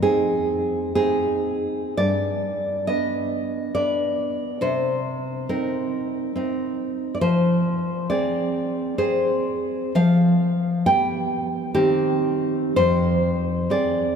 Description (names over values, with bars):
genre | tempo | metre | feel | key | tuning
romantic piece for solo classical guitar | 56-71 BPM | 3/4 | rubato | unclear | A4 = 440 Hz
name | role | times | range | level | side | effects
nylon-string guitar | solo | 0.0-14.2 s | F2 to G5 | -20 LUFS | equal | none
room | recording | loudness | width
wet cathedral reverb, RT60 4.4 s | recorded in a church or concert hall | -20 LUFS | side -7 dB against mid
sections
0.0-14.2 A section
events
none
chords
0.0 Fm7 (rootless); 2.0 G; 4.6 Cm; 7.2 Fm; 10.0 G7/F; 11.8 Cm/Eb; 12.8 Fm